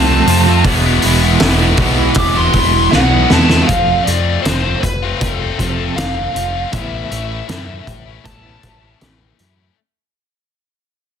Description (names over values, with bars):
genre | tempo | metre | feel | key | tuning
quiet-loud alternative rock | 79 BPM | 4/4 | straight | unclear | A4 = 442 Hz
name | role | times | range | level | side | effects
smooth overdriven lead guitar | melody | 0.0-9.0 s | A4 to D6 | -19 LUFS | left 1 dB | slapback echo
twelve-string electric guitar | arpeggios | 0.0-9.7 s | E2 to F#4 | -22 LUFS | right 6 dB | tremolo
overdriven electric guitar | riff | 0.0-3.7 s | E3 to F4 | -18 LUFS | right 14 dB | phaser
tight distorted guitar | riff | 0.0-9.8 s | A2 to F4 | -19 LUFS | left 13 dB | distortion
growling picked electric bass | bass | 0.0-9.7 s | E1 to F#2 | -18 LUFS | equal | overdrive
oversized low-tuned drum kit | drums | 0.3-9.6 s | hi-hat, kick drum, snare drum | -18 LUFS | equal | soft clipping on kick
room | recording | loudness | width
light reverb, studio reverb | dense, heavily limited modern master | -11 LUFS | side -8 dB against mid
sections
0.0-3.7 A section; 3.7-9.8 B section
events
lead electric guitar solo 0.0-3.7; drum fill 2.9-3.7; fade-out 3.7-9.8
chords
0.0 F; 0.7 Eadd9; 3.7 F; 6.7 Aadd9